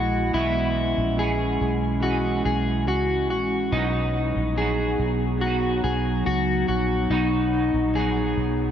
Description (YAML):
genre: dream pop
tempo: 71 BPM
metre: 4/4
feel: straight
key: B major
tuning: A4 = 440 Hz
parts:
  - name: semi-hollow electric guitar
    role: accompaniment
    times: 0.0-8.7 s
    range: B2 to G#4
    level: -32 LUFS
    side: right 5 dB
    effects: harmonic tremolo, ensemble chorus
  - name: warbly tape-like pad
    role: sustained chords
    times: 0.0-8.7 s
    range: F#3 to E4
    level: -26 LUFS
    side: right 1 dB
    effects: chorus, built-in reverb
  - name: electric guitar at the edge of break-up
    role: arpeggios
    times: 0.0-8.7 s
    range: D#4 to G#4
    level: -25 LUFS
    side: left 2 dB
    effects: lush chorus, analog delay
  - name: vintage muted fingered electric bass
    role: bass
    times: 0.0-8.7 s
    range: A#1 to C#2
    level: -27 LUFS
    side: equal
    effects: none
room: wet cathedral reverb, RT60 6.1 s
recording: dreamy mix soaked in reverb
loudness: -21 LUFS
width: side -9 dB against mid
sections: 0.0-8.7 A section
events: none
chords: 0.0 E; 3.7 B